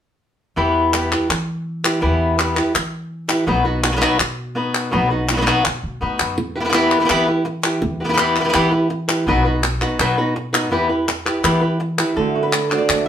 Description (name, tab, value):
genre	flamenco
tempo	166 BPM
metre	4/4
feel	straight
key	E harmonic minor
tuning	A4 = 440 Hz
part	flamenco guitar	melody	0.6-13.1 s	B2 to D5	-18 LUFS	equal	none
part	upright bass	bass	0.6-13.0 s	B1 to E3	-24 LUFS	equal	none
part	palmas hand claps	percussion	0.9-13.1 s	none	-21 LUFS	left 1 dB	none
part	flamenco guitar	stabs	12.2-13.1 s	D3 to F#4	-23 LUFS	right 6 dB	none
room	wet studio reverb, RT60 0.6 s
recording	band playing live in one room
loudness	-16 LUFS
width	side -9 dB against mid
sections	0.6-12.2 A section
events	none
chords	0.6 Em; 3.5 B; 6.4 Em; 9.3 B; 10.7 Em; 12.2 D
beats	| 0.57 0.93 1.30 1.66 | 2.02 2.38 2.75 3.11 | 3.47 3.83 4.20 4.56 | 4.92 5.29 5.65 6.01 | 6.37 6.73 7.10 7.46 | 7.82 8.18 8.54 8.91 | 9.27 9.63 9.99 10.36 | 10.72 11.08 11.44 11.80 | 12.17 12.53 12.89